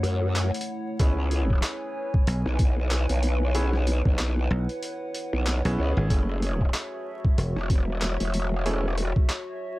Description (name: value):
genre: glitch hop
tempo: 94 BPM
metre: 4/4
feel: swing 58% on 16ths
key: F# minor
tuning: A4 = 440 Hz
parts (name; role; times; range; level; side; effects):
- warbly tape-like pad; sustained chords; 0.0-9.8 s; A3 to G#5; -34 LUFS; left 1 dB; chorus, built-in reverb, vintage 12-bit sampler grit, sidechain pumping
- growl bass; bass; 0.0-9.1 s; E1 to F#2; -25 LUFS; equal; chorus, overdrive
- boom bap sampler-style drum kit; drums; 0.0-9.4 s; handclaps, hi-hat, rim click; -32 LUFS; equal; overdrive, small room ambience
- downlifter; sound effects; 0.0-1.0 s; none; -54 LUFS; equal; none
- bright baby grand piano; stabs; 1.0-8.8 s; A3 to G#4; -34 LUFS; right 1 dB; sidechain pumping, dub echo
- electronic kick drum; drums; 1.0-9.3 s; none; -21 LUFS; equal; overdrive, small room ambience
- dry thumbed slap bass; bass; 2.3-7.5 s; E1 to B1; -24 LUFS; equal; none
room: little or no reverb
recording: vinyl crackle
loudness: -23 LUFS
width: side -18 dB against mid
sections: 0.0-9.8 A section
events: none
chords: 0.0 F#m7; 1.0 C#m7; 6.1 F#m7